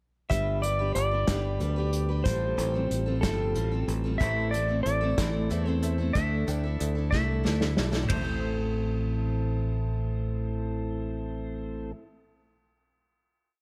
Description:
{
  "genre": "folk rock and heartland rock",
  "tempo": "62 BPM (dotted quarters)",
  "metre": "6/8",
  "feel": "straight",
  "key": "A minor",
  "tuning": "A4 = 440 Hz",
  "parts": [
    { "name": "clean lap steel guitar", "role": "melody", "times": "0.3-11.9 s", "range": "A4 to E5", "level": "-34 LUFS", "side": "equal", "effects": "none" },
    { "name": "picked steel-string acoustic guitar", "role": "accompaniment", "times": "0.3-12.1 s", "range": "A2 to B4", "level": "-35 LUFS", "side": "equal", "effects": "none" },
    { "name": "mellow tonewheel organ", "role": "sustained chords", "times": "0.3-11.9 s", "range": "G3 to A4", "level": "-42 LUFS", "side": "equal", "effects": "none" },
    { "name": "fingered electric bass", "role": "bass", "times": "0.3-11.9 s", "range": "G1 to E2", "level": "-31 LUFS", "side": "equal", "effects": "none" },
    { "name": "unplugged drum kit", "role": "drums", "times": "0.3-8.3 s", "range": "hi-hat, kick drum, ride cymbal, snare drum, toms", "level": "-33 LUFS", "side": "equal", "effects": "none" },
    { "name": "clear concert grand piano", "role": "accompaniment", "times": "4.2-11.9 s", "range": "A4 to G5", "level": "-45 LUFS", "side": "equal", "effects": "none" }
  ],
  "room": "small room ambience",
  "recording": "none",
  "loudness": "-28 LUFS",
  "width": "mono",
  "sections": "0.3-8.1 pre-chorus; 8.1-12.0 final chord",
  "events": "drum fill 7.1-8.1",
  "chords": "0.3 G; 2.3 Fadd9/A; 4.2 Am; 6.2 Dsus2; 8.1 Am"
}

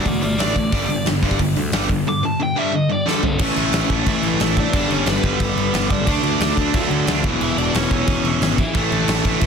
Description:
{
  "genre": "punk rock",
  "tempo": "180 BPM",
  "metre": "4/4",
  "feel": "straight",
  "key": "A mixolydian",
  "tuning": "A4 = 439 Hz",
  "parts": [
    { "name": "biting lead guitar", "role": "melody", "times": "0.0-9.5 s", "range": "E3 to D6", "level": "-24 LUFS", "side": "equal", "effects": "overdrive, digital delay" },
    { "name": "crunchy overdriven guitar", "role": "riff", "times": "0.0-9.5 s", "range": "E2 to D4", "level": "-23 LUFS", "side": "left 13 dB", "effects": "none" },
    { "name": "overdriven electric guitar", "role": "riff", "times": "0.0-9.5 s", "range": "E2 to D4", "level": "-23 LUFS", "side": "right 15 dB", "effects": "none" },
    { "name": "fuzz picked electric bass", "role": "bass", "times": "0.0-9.5 s", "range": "E1 to D2", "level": "-24 LUFS", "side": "right 1 dB", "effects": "overdrive" },
    { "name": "big rock drum kit", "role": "drums", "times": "0.1-9.5 s", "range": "crash cymbal, hi-hat, kick drum, snare drum, toms", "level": "-22 LUFS", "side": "equal", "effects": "none" }
  ],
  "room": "light reverb",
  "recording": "dense, heavily limited modern master",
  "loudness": "-16 LUFS",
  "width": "side -6 dB against mid",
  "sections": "0.0-3.4 A section; 3.4-9.5 B section",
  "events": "lead electric guitar solo 0.0-3.4; drum fill 3.1-3.4",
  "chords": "0.0 D; 0.7 G5; 3.4 A; 4.7 G; 6.1 D; 7.2 E; 8.7 A5"
}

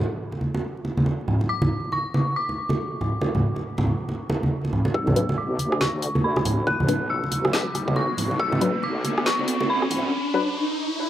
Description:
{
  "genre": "deep dubstep",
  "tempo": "139 BPM",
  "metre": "4/4",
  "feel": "swing 60% on 16ths, half-time",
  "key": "B minor",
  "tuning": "A4 = 444 Hz",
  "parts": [
    { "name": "congas", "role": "percussion", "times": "0.3-10.0 s", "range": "none", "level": "-24 LUFS", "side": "right 1 dB", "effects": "none" },
    { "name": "dark detuned synth bell", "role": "melody", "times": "1.5-10.1 s", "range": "B5 to F#6", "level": "-28 LUFS", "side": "left 1 dB", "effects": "chorus, low-pass filter, dub echo" },
    { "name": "wobble bass", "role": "bass", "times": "4.9-10.1 s", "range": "B1 to D2", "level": "-29 LUFS", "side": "equal", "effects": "chorus, tube saturation, high-pass filter" },
    { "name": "electronic kick drum", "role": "drums", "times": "4.9-8.5 s", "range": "none", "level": "-28 LUFS", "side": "left 1 dB", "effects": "high-pass filter on kick" },
    { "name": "riser and reverse cymbal", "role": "sound effects", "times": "7.0-11.1 s", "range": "none", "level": "-29 LUFS", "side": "equal", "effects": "none" },
    { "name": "filtered dub chord stab", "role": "stabs", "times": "5.2-10.5 s", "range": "F#3 to B4", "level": "-27 LUFS", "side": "left 4 dB", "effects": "chorus, dub echo" },
    { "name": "deep house drum kit", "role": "drums", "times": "5.2-10.0 s", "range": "hi-hat, rim click, snare drum", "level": "-26 LUFS", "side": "equal", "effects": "high-pass filter on hats, high-pass filter on snare" }
  ],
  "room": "moderate spring reverb, RT60 1.3 s",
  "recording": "vinyl crackle, high-pass filter",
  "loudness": "-21 LUFS",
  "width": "side -12 dB against mid",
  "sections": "0.0-4.9 A section; 4.9-11.1 B section",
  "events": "build-up 4.9-11.1; filter sweep on synth stab 4.9-11.1; filter sweep on synth bell 4.9-11.1; filter sweep 4.9-11.1; riser 7.0-11.1; break 10.1-11.1",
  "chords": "0.0 N.C.; 4.9 Bm"
}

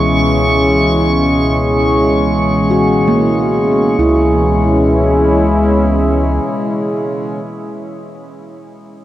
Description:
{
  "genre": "ambient",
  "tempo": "free time",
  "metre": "none",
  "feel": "none",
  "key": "C# dorian",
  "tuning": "A4 = 440 Hz",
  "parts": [
    { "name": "warm analog pad", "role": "sustained chords", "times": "0.0-7.9 s", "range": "B2 to E4", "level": "-15 LUFS", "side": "equal", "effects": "chorus" },
    { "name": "round analog bass", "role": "bass", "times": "0.0-6.4 s", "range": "C#2", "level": "-19 LUFS", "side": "equal", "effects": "none" },
    { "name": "pedal harmonium", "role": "drone", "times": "0.0-7.4 s", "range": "C#3 to G#3", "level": "-17 LUFS", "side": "left 1 dB", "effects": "none" },
    { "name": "drifting glass-harmonics texture", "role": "texture", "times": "0.0-4.0 s", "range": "C#6", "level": "-20 LUFS", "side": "equal", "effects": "chorus, built-in reverb" },
    { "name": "handpan", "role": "arpeggios", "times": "2.7-7.4 s", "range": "A#3 to F#4", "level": "-19 LUFS", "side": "right 1 dB", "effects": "tape echo" }
  ],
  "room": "wet huge ambient reverb, RT60 7.7 s",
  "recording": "worn, warbling old tape, cassette tape, warbly pitch drift",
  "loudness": "-11 LUFS",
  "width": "side -13 dB against mid",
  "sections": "0.0-4.0 A section; 4.0-7.3 B section",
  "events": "none",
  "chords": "0.0 C#m7"
}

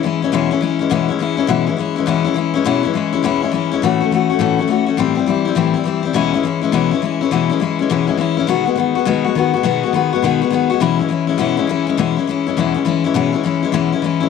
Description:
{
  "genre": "rock",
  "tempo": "206 BPM",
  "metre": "4/4",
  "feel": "swing 65% on 8ths",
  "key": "E major",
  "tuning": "A4 = 440 Hz",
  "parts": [
    { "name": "picked steel-string acoustic guitar", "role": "solo", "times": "0.0-14.3 s", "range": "E2 to F#4", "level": "-15 LUFS", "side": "left 8 dB", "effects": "none" }
  ],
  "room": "moderate spring reverb, RT60 1.6 s, studio ambience",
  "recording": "none",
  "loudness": "-15 LUFS",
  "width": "side -5 dB against mid",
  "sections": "0.0-13.2 A section; 13.2-14.3 B section",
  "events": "none",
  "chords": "0.0 E6; 3.8 A6; 5.0 Am7; 6.2 E6; 8.5 B6; 10.8 E6"
}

